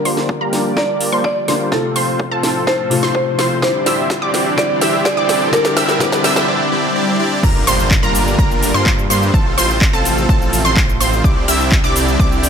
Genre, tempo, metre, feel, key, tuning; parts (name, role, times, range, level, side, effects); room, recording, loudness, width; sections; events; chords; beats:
EDM, festival progressive house; 126 BPM; 4/4; straight; F major; A4 = 440 Hz
buzzing marimba with medium hard mallets; melody; 0.0-6.5 s; A4 to D5; -20 LUFS; right 1 dB; digital delay
dark grand piano; accompaniment; 0.0-7.5 s; C3 to F4; -22 LUFS; left 5 dB; sidechain pumping, digital delay
lush unison pad; sustained chords; 0.0-12.5 s; A2 to D5; -25 LUFS; equal; chorus, sidechain pumping
wide unison pluck; arpeggios; 0.0-12.5 s; A5 to E6; -22 LUFS; equal; sidechain pumping, digital delay
supersaw chords; riff; 0.0-12.5 s; G3 to E5; -19 LUFS; right 1 dB; sidechain pumping, low-pass filter, digital delay
riser, swell and impact; sound effects; 1.8-9.3 s; -26 LUFS; equal
house drum kit; drums; 0.1-12.5 s; crash cymbal, handclaps, hi-hat, shaker, snare drum; -20 LUFS; equal; overdrive
electronic kick drum; drums; 0.3-12.3 s; -16 LUFS; equal; overdrive, high-pass filter on kick, high-pass filter on room
wide detuned saw bass; bass; 7.4-12.5 s; G1 to G2; -20 LUFS; equal; chorus, sidechain pumping
light reverb, digital ambience; -13 LUFS; side -7 dB against mid
0.0-7.4 A section; 7.4-12.5 B section
build-up 0.0-7.4; drum fill 0.0-6.5; filter sweep on supersaw synth 0.0-7.4; break 6.5-7.4; swell 6.5-7.4; drop 7.4-12.5; impact 7.4-9.3
0.0 Gm7; 1.7 F/A; 3.6 Cadd9; 5.5 Bb; 7.4 Gm7; 9.3 F/A; 11.2 Cadd9
0.29 0.77 1.24 | 1.72 2.20 2.67 3.15 | 3.62 4.10 4.58 5.05 | 5.53 6.01 6.48 6.96 | 7.43 7.91 8.39 8.86 | 9.34 9.81 10.29 10.77 | 11.24 11.72 12.20